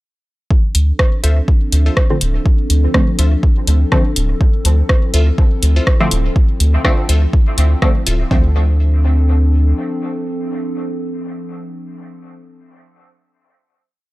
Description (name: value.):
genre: dub techno.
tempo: 123 BPM.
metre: 4/4.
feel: swing 56% on 16ths.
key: D minor.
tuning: A4 = 440 Hz.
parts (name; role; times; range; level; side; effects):
warbly tape-like pad; sustained chords; 0.8-12.2 s; F3 to A4; -24 LUFS; equal; chorus, built-in reverb, sidechain pumping.
electronic kick drum; drums; 0.5-8.4 s; none; -13 LUFS; equal; none.
round analog bass; bass; 0.7-9.7 s; D1 to D2; -12 LUFS; equal; sidechain pumping.
deep house drum kit; drums; 0.7-8.2 s; hi-hat, rim click; -20 LUFS; equal; none.
wavetable chord stab; riff; 1.2-12.2 s; F4 to E5; -28 LUFS; left 2 dB; sidechain pumping, dub echo.
filtered dub chord stab; stabs; 2.1-12.2 s; D3 to C4; -21 LUFS; equal; chorus, phaser, dub echo.
room: digital ambience.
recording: dry, gritty hardware recording.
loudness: -12 LUFS.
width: side -19 dB against mid.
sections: 0.5-8.3 groove; 8.3-12.2 final chord.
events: none.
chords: 0.5 Dm7.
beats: | 0.50 0.99 1.48 1.97 | 2.46 2.94 3.43 3.92 | 4.41 4.89 5.38 5.87 | 6.36 6.85 7.33 7.82 | 8.31 8.80 9.29 9.77 | 10.26 10.75 11.24 11.72.